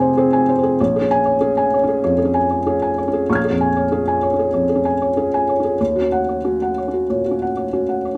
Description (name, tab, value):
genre	neoclassical minimalist piano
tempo	95 BPM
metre	4/4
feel	rubato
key	Bb minor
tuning	A4 = 440 Hz
part	felt-muted upright piano	solo	0.0-8.2 s	Bb1 to Ab6	-18 LUFS	equal	none
room	light reverb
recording	none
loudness	-18 LUFS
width	mono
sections	0.0-8.2 A section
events	none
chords	0.0 Fm; 0.8 Bbm7; 5.8 Ebm7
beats	0.15 | 0.79 1.41 2.04 2.65 | 3.27 3.90 4.52 5.15 | 5.79 6.43 7.08 7.72